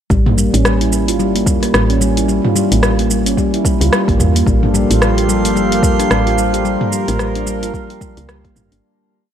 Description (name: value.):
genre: organic downtempo.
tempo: 110 BPM.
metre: 4/4.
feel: swing 59% on 16ths.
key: unclear.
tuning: A4 = 439 Hz.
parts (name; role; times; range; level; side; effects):
handpan; arpeggios; 0.1-8.8 s; G3 to G4; -16 LUFS; equal; digital delay, shimmer reverb.
woody FM bass; bass; 0.1-8.8 s; G1 to E2; -17 LUFS; equal; sidechain pumping.
deep house drum kit; drums; 0.1-8.8 s; hi-hat, rim click, shaker, toms; -19 LUFS; equal; overdrive.
electronic kick drum; drums; 0.1-8.5 s; none; -17 LUFS; equal; overdrive.
warm analog pad; sustained chords; 4.5-8.8 s; F3 to Bb4; -22 LUFS; equal; chorus, sidechain pumping, shimmer reverb.
drifting glass-harmonics texture; texture; 4.8-8.8 s; F4 to F5; -23 LUFS; right 4 dB; chorus, built-in reverb, shimmer reverb.
room: light reverb, digital ambience.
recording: none.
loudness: -12 LUFS.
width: side -9 dB against mid.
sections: 0.1-8.8 groove.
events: fade-out 5.9-8.8.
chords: 0.1 A7(no3); 4.5 Gm9.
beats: | 0.10 0.65 1.20 1.74 | 2.29 2.83 3.38 3.92 | 4.47 5.01 5.56 6.10 | 6.65 7.20 7.74 8.29.